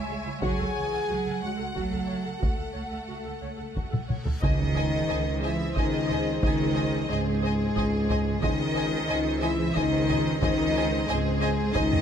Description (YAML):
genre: cinematic, epic orchestral film score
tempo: 90 BPM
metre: 3/4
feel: straight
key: unclear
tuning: A4 = 443 Hz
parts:
  - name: warm symphonic violin section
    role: second line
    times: 0.0-11.8 s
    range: D#5 to G#5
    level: -37 LUFS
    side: left 2 dB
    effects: none
  - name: warm symphonic viola section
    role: accompaniment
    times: 0.0-11.8 s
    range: E4 to D#5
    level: -37 LUFS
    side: right 1 dB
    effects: none
  - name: warm symphonic cello section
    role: bass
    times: 0.0-12.0 s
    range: G#2 to A3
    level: -33 LUFS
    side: right 3 dB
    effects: none
  - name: rich symphonic double bass section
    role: bass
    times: 0.1-12.0 s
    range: C#2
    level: -33 LUFS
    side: right 3 dB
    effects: none
  - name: rich symphonic violin section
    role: melody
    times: 0.4-12.0 s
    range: G#4 to G#5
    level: -34 LUFS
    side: left 1 dB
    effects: none
  - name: dark French horn section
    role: sustained chords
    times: 0.4-12.0 s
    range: G#3 to G#4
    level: -30 LUFS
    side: left 5 dB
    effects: none
  - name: taiko ensemble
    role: drums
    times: 0.4-12.0 s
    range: none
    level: -29 LUFS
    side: equal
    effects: none
  - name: timpani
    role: percussion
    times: 0.4-1.4, 4.4-5.4 s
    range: C#3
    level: -33 LUFS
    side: equal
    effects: none
  - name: reverse cymbal and impact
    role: sound effects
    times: 4.2-6.4 s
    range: none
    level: -39 LUFS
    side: right 1 dB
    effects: none
  - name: warm symphonic string section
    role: sustained chords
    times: 4.4-12.0 s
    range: B#3 to B#4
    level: -36 LUFS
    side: equal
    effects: none
  - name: dark tuba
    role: bass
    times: 4.4-12.0 s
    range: C#2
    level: -33 LUFS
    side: right 5 dB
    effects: none
room: moderate scoring stage reverb, RT60 1.6 s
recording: none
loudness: -24 LUFS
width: side -8 dB against mid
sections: 0.0-4.4 A section; 4.4-12.0 A section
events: drum fill 3.9-4.4; reverse cymbal 4.2; impact 4.4-6.4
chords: 0.4 F#m/C#; 4.4 G#/C#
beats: | 0.43 1.09 1.76 | 2.43 3.09 3.76 | 4.43 5.09 5.76 | 6.43 7.09 7.76 | 8.43 9.09 9.76 | 10.43 11.09 11.76